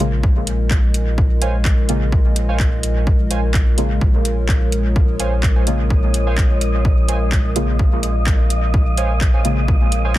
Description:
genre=dub techno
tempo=127 BPM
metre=4/4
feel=swing 54% on 16ths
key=Bb minor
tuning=A4 = 437 Hz
part: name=dark analog pad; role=sustained chords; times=0.0-10.2 s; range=Ab3 to F5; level=-26 LUFS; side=left 1 dB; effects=chorus, sidechain pumping
part: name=deep mellow chord stab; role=stabs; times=0.0-9.8 s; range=Db3 to F4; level=-25 LUFS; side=left 1 dB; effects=chorus, phaser, sidechain pumping, dub echo
part: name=soft dub sub bass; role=bass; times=0.0-10.2 s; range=Bb1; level=-19 LUFS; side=equal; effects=tube saturation, sidechain pumping
part: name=deep house drum kit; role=drums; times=0.0-10.2 s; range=handclaps, hi-hat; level=-27 LUFS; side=equal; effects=overdrive, dub echo
part: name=electronic kick drum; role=drums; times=0.2-10.2 s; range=none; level=-16 LUFS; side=equal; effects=none
part: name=warbly lo-fi synth keys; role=riff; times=1.4-10.1 s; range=C5 to Ab5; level=-29 LUFS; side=right 5 dB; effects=chorus, sidechain pumping, dub echo
part: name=wind-like tuned noise texture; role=texture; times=5.1-10.2 s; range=Eb5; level=-28 LUFS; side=equal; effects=built-in reverb, sidechain pumping
room=little or no reverb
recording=dense, heavily limited modern master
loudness=-14 LUFS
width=side -15 dB against mid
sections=0.0-10.2 A section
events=none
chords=0.0 Bbm7

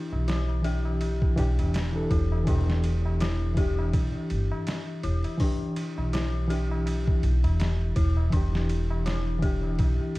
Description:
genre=trip hop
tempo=82 BPM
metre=4/4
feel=swing 57% on 16ths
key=E minor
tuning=A4 = 438 Hz
part: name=reed electric piano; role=accompaniment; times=0.0-10.2 s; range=E3 to A4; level=-31 LUFS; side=equal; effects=tremolo, tape echo
part: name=dark detuned synth bell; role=arpeggios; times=0.0-10.2 s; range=D4 to G4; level=-35 LUFS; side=left 3 dB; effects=chorus, tape echo
part: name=upright bass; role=bass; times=0.1-10.2 s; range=E1 to B1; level=-26 LUFS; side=equal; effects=tube saturation
part: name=tabla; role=percussion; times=0.1-10.1 s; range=none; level=-44 LUFS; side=left 2 dB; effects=none
part: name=trip hop sampler-style drum kit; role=drums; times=0.3-10.2 s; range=hi-hat, kick drum, ride cymbal, snare drum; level=-29 LUFS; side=equal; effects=overdrive
room=digital ambience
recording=dark, warm production, vinyl crackle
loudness=-24 LUFS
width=side -19 dB against mid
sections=0.0-10.2 A section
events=none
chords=0.0 Em7

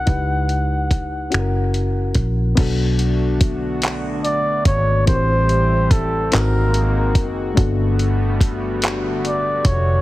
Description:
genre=slow six-eight R&B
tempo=48 BPM (dotted quarters)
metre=6/8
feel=straight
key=B minor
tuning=A4 = 440 Hz
part: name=breathy flugelhorn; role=melody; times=0.0-10.0 s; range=A4 to F#5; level=-22 LUFS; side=equal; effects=digital delay
part: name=reed electric piano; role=accompaniment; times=0.0-10.0 s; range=A3 to C5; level=-26 LUFS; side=left 5 dB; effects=overdrive
part: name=vintage muted fingered electric bass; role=bass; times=0.0-10.0 s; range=E#1 to C#2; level=-20 LUFS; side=equal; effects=none
part: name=dusty soul sampler-style drum kit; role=drums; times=0.1-9.8 s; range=crash cymbal, finger snaps, handclaps, hi-hat, kick drum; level=-19 LUFS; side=equal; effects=none
part: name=chorused pulse-width pad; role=sustained chords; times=2.6-10.0 s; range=D3 to G4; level=-25 LUFS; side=equal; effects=none
room=little or no reverb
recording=heavily compressed radio sound, multiband compression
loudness=-16 LUFS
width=side -16 dB against mid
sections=0.0-2.6 A section; 2.6-10.0 B section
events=none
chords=0.1 C#m7b5; 1.3 F#7; 2.6 Bm7; 5.1 Am7; 6.3 G#9; 7.6 Gmaj9

